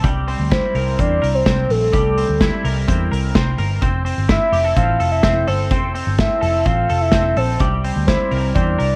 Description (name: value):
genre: jangly indie pop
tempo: 127 BPM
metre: 4/4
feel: straight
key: F major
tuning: A4 = 440 Hz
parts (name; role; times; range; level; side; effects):
- twelve-string electric guitar; arpeggios; 0.0-9.0 s; G3 to Bb4; -26 LUFS; equal; lush chorus
- vintage muted picked electric bass; bass; 0.0-9.0 s; F1 to E2; -22 LUFS; equal; none
- loose indie drum kit; drums; 0.0-8.9 s; hi-hat, kick drum, snare drum; -23 LUFS; equal; none
- soft octave-layered synth lead; melody; 0.5-9.0 s; A4 to F5; -22 LUFS; equal; chorus, phaser, plate reverb
room: light reverb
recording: worn, warbling old tape, cassette tape, vinyl crackle, warbly pitch drift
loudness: -17 LUFS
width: mono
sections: 0.0-9.0 A section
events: none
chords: 0.0 C7; 3.8 Fmaj7; 7.6 C7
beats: | 0.04 0.51 0.98 1.46 | 1.93 2.40 2.88 3.35 | 3.82 4.29 4.77 5.24 | 5.71 6.19 6.66 7.13 | 7.61 8.08 8.55